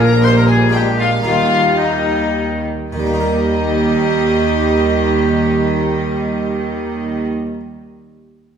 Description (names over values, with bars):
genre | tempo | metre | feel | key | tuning
classical, baroque-style concerto movement with solo episodes | 100-125 BPM | 3/4 | straight | Eb major | A4 = 440 Hz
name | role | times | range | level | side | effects
clear oboe | melody | 0.0-7.3 s | Eb4 to C5 | -23 LUFS | left 4 dB | none
warm studio violin section | melody | 0.0-7.3 s | Eb5 to C6 | -27 LUFS | left 2 dB | none
dark studio violin section | second line | 0.0-7.3 s | Eb4 to C5 | -21 LUFS | left 4 dB | none
dark chamber viola section | accompaniment | 0.0-7.3 s | F3 to Ab3 | -21 LUFS | right 4 dB | none
harpsichord | accompaniment | 0.0-7.6 s | Bb2 to Bb4 | -24 LUFS | equal | none
rich chamber double bass section | bass | 0.0-7.3 s | Bb1 to Eb2 | -19 LUFS | right 2 dB | none
warm chamber cello section | bass | 0.0-7.3 s | Bb2 to Eb3 | -22 LUFS | right 2 dB | none
room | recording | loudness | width
wet recital hall reverb, RT60 1.5 s | recorded in a church or concert hall | -13 LUFS | side -7 dB against mid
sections
0.0-2.9 A section; 2.9-6.5 B section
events
slowing down 0.0-2.9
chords
0.2 Eb/Bb; 0.7 Bb7; 1.2 Eb